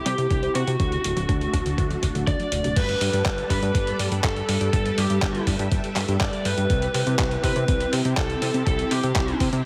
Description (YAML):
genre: italo disco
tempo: 122 BPM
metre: 4/4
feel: straight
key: G major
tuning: A4 = 437 Hz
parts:
  - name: lead guitar through a small cranked amp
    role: melody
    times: 0.0-9.4 s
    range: F#4 to D5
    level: -30 LUFS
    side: equal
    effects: overdrive, delay
  - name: string machine, full ensemble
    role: sustained chords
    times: 0.0-9.7 s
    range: G3 to E5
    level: -32 LUFS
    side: equal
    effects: ensemble chorus
  - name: warbly dusty pluck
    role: arpeggios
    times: 0.1-2.7 s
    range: A2 to C5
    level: -36 LUFS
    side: equal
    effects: none
  - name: fat analog bass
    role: bass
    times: 0.1-9.6 s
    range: D1 to C3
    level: -28 LUFS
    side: equal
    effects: none
  - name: dusty soul sampler-style drum kit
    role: drums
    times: 0.1-9.6 s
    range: crash cymbal, handclaps, hi-hat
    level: -32 LUFS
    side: equal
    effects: overdrive
  - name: electronic kick drum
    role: drums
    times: 0.3-9.5 s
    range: none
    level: -28 LUFS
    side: equal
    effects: overdrive
room: light reverb, digital ambience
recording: heavily compressed radio sound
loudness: -23 LUFS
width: mono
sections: 0.0-2.8 A section; 2.8-9.7 B section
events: none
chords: 0.0 C; 0.8 D; 2.8 Gadd9; 6.7 C